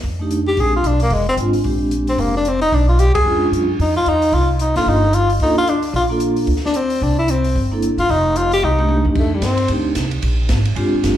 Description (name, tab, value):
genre	jazz, small-group swing and bop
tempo	224 BPM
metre	4/4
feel	swing 60% on 8ths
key	unclear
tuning	A4 = 440 Hz
part	upright bass	bass	0.0-11.2 s	F1 to G2	-19 LUFS	equal	none
part	open jazz drum kit	drums	0.0-11.1 s	crash cymbal, hi-hat, kick drum, ride cymbal, snare drum, toms	-27 LUFS	equal	none
part	vibraphone with medium mallets	accompaniment	0.2-11.2 s	Ab3 to A4	-20 LUFS	right 2 dB	slapback echo
part	breathy tenor saxophone	melody	0.5-9.7 s	G3 to Ab4	-18 LUFS	left 2 dB	slapback echo
room	light reverb, studio reverb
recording	live gig heard through the venue's PA, club reverb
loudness	-14 LUFS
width	side -11 dB against mid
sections	0.0-9.2 A section; 9.2-11.2 B section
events	band accent 3.1; drum fill 8.6-9.2; tenor saxophone solo 9.2-11.2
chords	0.0 F13; 0.6 Bb13; 2.7 Bdim7; 3.8 F5; 4.9 Gm7; 7.0 C5; 8.1 F13; 10.2 Bb13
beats	0.03 0.30 | 0.57 0.84 1.11 1.38 | 1.65 1.91 2.18 2.45 | 2.72 2.99 3.26 3.52 | 3.79 4.06 4.33 4.60 | 4.87 5.13 5.40 5.67 | 5.94 6.21 6.47 6.74 | 7.01 7.28 7.55 7.81 | 8.08 8.35 8.62 8.89 | 9.16 9.42 9.69 9.96 | 10.23 10.50 10.77 11.04